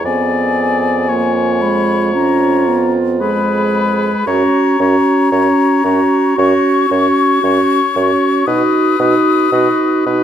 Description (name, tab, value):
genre	classical, slow romantic movement for wind quintet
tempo	57 BPM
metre	4/4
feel	rubato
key	unclear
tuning	A4 = 443 Hz
part	mellow hollow concert flute	melody	0.0-10.2 s	Ab5 to D#6	-18 LUFS	left 9 dB	none
part	clear oboe	second line	0.0-10.2 s	B4 to D5	-20 LUFS	left 3 dB	none
part	warm bassoon	bass	0.0-10.2 s	F2 to B2	-19 LUFS	right 2 dB	none
part	clear clarinet	accompaniment	0.1-10.2 s	F4 to Ab4	-18 LUFS	right 7 dB	none
part	dark French horn	accompaniment	0.1-10.2 s	Ab3 to D#4	-16 LUFS	equal	none
room	moderate recital hall reverb, RT60 1.6 s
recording	close, detailed microphones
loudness	-11 LUFS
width	side -9 dB against mid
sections	0.0-10.2 A section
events	none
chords	0.1 Fdim7; 4.3 F#; 8.5 B